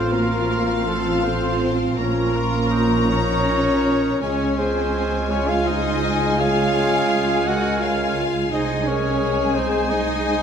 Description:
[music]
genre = classical, slow romantic movement for symphony orchestra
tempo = 53-60 BPM (dotted quarters)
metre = 12/8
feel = rubato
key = unclear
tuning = A4 = 440 Hz
[part]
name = clear symphonic violin section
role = melody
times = 0.0-10.4 s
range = F5 to Bb5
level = -28 LUFS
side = left 5 dB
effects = none
[part]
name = bright large flute ensemble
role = second line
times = 0.0-10.4 s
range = Ab5 to Db6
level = -33 LUFS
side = left 1 dB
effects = none
[part]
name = mellow clarinet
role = second line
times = 0.0-10.4 s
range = F4 to Eb5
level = -31 LUFS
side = left 4 dB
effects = none
[part]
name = mellow oboe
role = second line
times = 0.0-10.4 s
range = Db4 to Bb4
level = -31 LUFS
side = right 2 dB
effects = none
[part]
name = rich studio violin section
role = second line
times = 0.0-10.4 s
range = A4 to Gb5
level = -30 LUFS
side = left 5 dB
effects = none
[part]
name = mellow bassoon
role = accompaniment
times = 0.0-10.4 s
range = F3 to Ab3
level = -31 LUFS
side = right 1 dB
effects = none
[part]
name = warm symphonic viola section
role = accompaniment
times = 0.0-10.4 s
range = Ab3 to Ab4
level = -30 LUFS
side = equal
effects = none
[part]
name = mellow French horn section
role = sustained chords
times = 0.0-10.4 s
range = Ab3 to Ab4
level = -28 LUFS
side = left 4 dB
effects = none
[part]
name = mellow trumpet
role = stabs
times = 0.0-10.4 s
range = A4 to Gb5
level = -27 LUFS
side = right 2 dB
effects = none
[part]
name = rich symphonic cello section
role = bass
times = 0.0-10.4 s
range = A3 to Gb4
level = -24 LUFS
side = right 2 dB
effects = none
[part]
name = rich symphonic double bass section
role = bass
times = 0.0-10.4 s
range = A1 to Db2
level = -25 LUFS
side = right 4 dB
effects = none
[sound]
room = wet recital hall reverb, RT60 1.5 s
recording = none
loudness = -18 LUFS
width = side -7 dB against mid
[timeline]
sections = 0.0-10.4 A section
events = none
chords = 0.0 F/A; 2.0 Bbm; 4.2 Db; 8.5 Ab/C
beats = 0.87 1.99 3.10 | 4.22 5.30 6.40 7.46 | 8.52 9.55

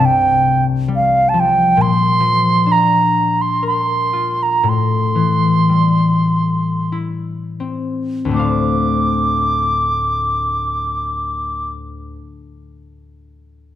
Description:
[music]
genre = celtic folk, Celtic slow air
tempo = 41-69 BPM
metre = 3/4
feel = rubato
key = D minor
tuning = A4 = 440 Hz
[part]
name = wooden flute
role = melody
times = 0.0-11.7 s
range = F5 to D6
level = -16 LUFS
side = right 2 dB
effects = none
[part]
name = concert harp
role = accompaniment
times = 0.0-12.2 s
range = C2 to F5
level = -18 LUFS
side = left 4 dB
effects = none
[sound]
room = light reverb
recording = none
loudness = -14 LUFS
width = side -11 dB against mid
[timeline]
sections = 0.0-8.3 A section; 8.3-12.6 B section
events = slowing down 1.8-8.3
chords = 0.0 Csus4; 1.8 Bb; 4.6 Am7; 8.3 Dm7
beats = 0.00 0.89 | 1.77 2.67 3.63 | 4.63 5.71 6.93 | 8.33 9.76 11.15

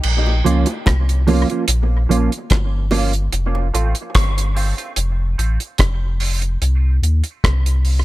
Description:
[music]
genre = dub reggae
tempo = 73 BPM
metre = 4/4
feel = straight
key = Bb dorian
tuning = A4 = 439 Hz
[part]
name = warm sub bass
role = bass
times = 0.0-8.0 s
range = F1 to Eb2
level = -17 LUFS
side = equal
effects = none
[part]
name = deep reggae drum kit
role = drums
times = 0.0-8.0 s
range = crash cymbal, hi-hat, kick drum, rim click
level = -19 LUFS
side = equal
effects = none
[part]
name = bongos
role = percussion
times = 0.3-3.7 s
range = none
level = -28 LUFS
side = right 2 dB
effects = high-pass filter on perc, tape echo
[part]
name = mellow electric guitar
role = accompaniment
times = 0.4-6.4 s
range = F3 to F4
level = -22 LUFS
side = right 4 dB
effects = ensemble chorus, high-pass filter, tape echo
[sound]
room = small room ambience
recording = none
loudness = -15 LUFS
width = side -17 dB against mid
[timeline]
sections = 0.0-8.0 A section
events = filter sweep 0.0-8.0; part muted 3.3-8.0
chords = 0.0 Bbm; 3.3 F; 6.6 Cm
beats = | 0.04 0.86 1.68 2.51 | 3.33 4.15 4.97 5.79 | 6.62 7.44

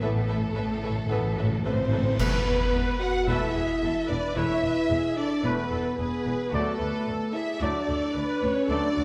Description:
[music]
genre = cinematic, epic orchestral film score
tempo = 111 BPM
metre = 4/4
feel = straight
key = unclear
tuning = A4 = 439 Hz
[part]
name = warm symphonic violin section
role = melody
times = 0.0-9.0 s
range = A4 to F#5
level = -36 LUFS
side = equal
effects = none
[part]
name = warm symphonic violin section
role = second line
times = 0.0-9.0 s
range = A4 to F#5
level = -38 LUFS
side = equal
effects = none
[part]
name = rich symphonic viola section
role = accompaniment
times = 0.0-9.0 s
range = F#4 to C#5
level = -36 LUFS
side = equal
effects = none
[part]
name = bright trombone section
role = sustained chords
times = 0.0-8.9 s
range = E3 to B3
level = -41 LUFS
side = equal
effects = none
[part]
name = mellow French horn section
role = sustained chords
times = 0.0-9.0 s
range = A3 to F#4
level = -31 LUFS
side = equal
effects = none
[part]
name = clear symphonic double bass section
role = bass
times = 0.0-9.0 s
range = E1 to D2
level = -35 LUFS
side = equal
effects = none
[part]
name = rich symphonic cello section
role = bass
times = 0.0-9.0 s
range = D2 to A2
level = -37 LUFS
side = equal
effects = none
[part]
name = timpani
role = percussion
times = 0.0-3.0 s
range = E2 to A2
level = -34 LUFS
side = equal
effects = none
[part]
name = mellow trumpet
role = stabs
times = 2.2-8.9 s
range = B4 to D5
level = -38 LUFS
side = equal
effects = none
[part]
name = clash cymbals and concert bass drum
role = percussion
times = 2.2-3.2 s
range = none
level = -35 LUFS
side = equal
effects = none
[sound]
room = wet concert hall reverb, RT60 2.3 s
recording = none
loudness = -26 LUFS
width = mono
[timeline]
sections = 0.0-2.2 A section; 2.2-9.0 A section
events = timpani fill 0.0-2.2; band accent 2.2-2.7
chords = 0.0 Aadd9; 2.2 Esus4; 6.5 D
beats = | 0.02 0.56 1.11 1.65 | 2.19 2.73 3.27 3.82 | 4.36 4.90 5.44 5.99 | 6.53 7.07 7.61 8.16 | 8.70

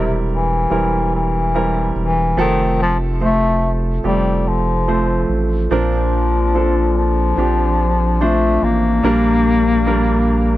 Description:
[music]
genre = pop ballad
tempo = 72 BPM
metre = 4/4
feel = straight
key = Bb major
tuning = A4 = 437 Hz
[part]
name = clear bass clarinet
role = melody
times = 0.0-10.6 s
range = C3 to Bb3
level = -18 LUFS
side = left 3 dB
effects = tape echo
[part]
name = clear baby grand piano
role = accompaniment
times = 0.0-10.6 s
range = Bb2 to C5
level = -20 LUFS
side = right 4 dB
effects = none
[part]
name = saturated sub bass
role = bass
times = 0.0-10.6 s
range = E1 to Bb1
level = -19 LUFS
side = equal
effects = none
[part]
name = fingerpicked plugged-in steel-string acoustic guitar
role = arpeggios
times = 5.7-10.6 s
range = Bb2 to G4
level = -24 LUFS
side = left 7 dB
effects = none
[sound]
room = little or no reverb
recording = dry, close 1970s-style studio recording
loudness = -14 LUFS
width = side -15 dB against mid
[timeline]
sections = 0.0-10.6 A section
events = none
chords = 0.0 C7/E; 2.4 F; 5.7 Bbadd9; 9.0 Gm/Bb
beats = 0.71 1.55 | 2.38 3.21 4.05 4.88 | 5.71 6.55 7.38 8.21 | 9.05 9.88

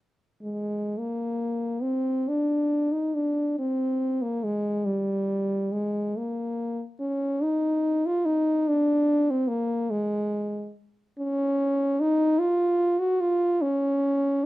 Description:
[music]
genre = classical, free, expressive piece for unaccompanied French horn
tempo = 28-51 BPM (dotted quarters)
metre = 6/8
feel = rubato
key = unclear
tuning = A4 = 440 Hz
[part]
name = warm French horn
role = solo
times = 0.4-14.5 s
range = G3 to Gb4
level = -23 LUFS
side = equal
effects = none
[sound]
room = moderate studio reverb, RT60 0.8 s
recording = none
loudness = -23 LUFS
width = side -18 dB against mid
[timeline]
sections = 1.0-14.5 A section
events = none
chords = none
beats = | 0.97 2.27 | 3.59 4.86 | 6.17 7.44 | 8.71 9.94 | 11.20 12.41 | 13.62

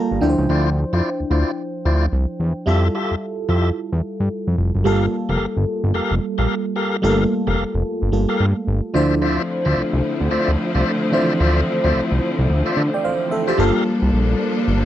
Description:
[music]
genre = R&B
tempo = 110 BPM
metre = 4/4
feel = swing 61% on 16ths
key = G dorian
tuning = A4 = 441 Hz
[part]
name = FM electric piano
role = accompaniment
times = 0.0-14.8 s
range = E3 to Bb5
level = -22 LUFS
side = right 1 dB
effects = chorus, phaser
[part]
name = fat analog bass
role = bass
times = 0.1-14.8 s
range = F1 to D3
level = -18 LUFS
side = equal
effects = none
[part]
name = tonewheel organ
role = stabs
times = 0.5-13.8 s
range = E4 to F5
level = -23 LUFS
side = left 2 dB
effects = overdrive, fast rotary speaker, slapback echo
[part]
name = clear symphonic string section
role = sustained chords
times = 9.2-14.8 s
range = D3 to A4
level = -22 LUFS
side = left 2 dB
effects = none
[sound]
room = little or no reverb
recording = dry, close 1970s-style studio recording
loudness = -17 LUFS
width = side -12 dB against mid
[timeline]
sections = 0.0-4.9 A section; 4.9-13.6 B section; 13.6-14.8 C section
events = FM electric piano fill 0.0-0.5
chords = 0.2 Dm9; 2.7 Fmaj9; 4.9 Gm9; 8.9 Dm9; 13.6 Gm9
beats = | 0.49 1.04 1.58 2.13 | 2.67 3.22 3.76 4.31 | 4.86 5.40 5.95 6.49 | 7.04 7.58 8.13 8.67 | 9.22 9.76 10.31 10.86 | 11.40 11.95 12.49 13.04 | 13.58 14.13 14.67

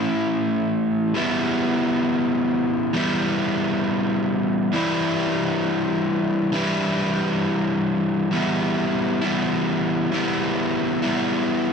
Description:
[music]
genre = rock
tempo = 100 BPM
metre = 3/4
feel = straight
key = E dorian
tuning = A4 = 440 Hz
[part]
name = crunchy overdriven guitar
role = solo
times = 0.0-11.7 s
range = E3 to B4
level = -20 LUFS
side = equal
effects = none
[sound]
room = moderate concert hall reverb, RT60 2.5 s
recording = none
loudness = -20 LUFS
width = side -6 dB against mid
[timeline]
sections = 0.0-8.3 A section; 8.3-11.7 B section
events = none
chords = 0.0 A/E; 1.2 Em; 4.7 G/E; 8.3 Em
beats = 0.55 | 1.15 1.75 2.35 | 2.94 3.54 4.14 | 4.74 5.34 5.94 | 6.53 7.13 7.73 | 8.33 8.93 9.53 | 10.13 10.73 11.34

